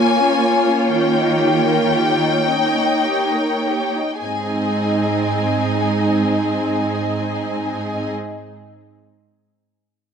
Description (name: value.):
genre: classical, slow romantic movement for string orchestra.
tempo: 32-44 BPM (dotted quarters).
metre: 12/8.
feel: rubato.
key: Ab major.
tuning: A4 = 441 Hz.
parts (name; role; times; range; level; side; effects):
warm symphonic violin section; melody; 0.0-8.1 s; G5 to Ab5; -22 LUFS; left 5 dB; none.
warm symphonic violin section; second line; 0.0-8.1 s; Bb3 to Eb5; -22 LUFS; left 2 dB; none.
rich symphonic viola section; accompaniment; 0.0-8.1 s; Bb3 to F4; -20 LUFS; right 3 dB; none.
rich symphonic cello section; bass; 0.9-8.1 s; Ab2 to Eb3; -23 LUFS; right 3 dB; none.
room: moderate scoring stage reverb, RT60 1.7 s.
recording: none.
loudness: -16 LUFS.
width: side -7 dB against mid.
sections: 0.0-4.2 A section; 4.2-10.1 B section.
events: slowing down 0.0-4.2.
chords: 0.0 Bbm; 0.9 Eb7; 4.2 Ab.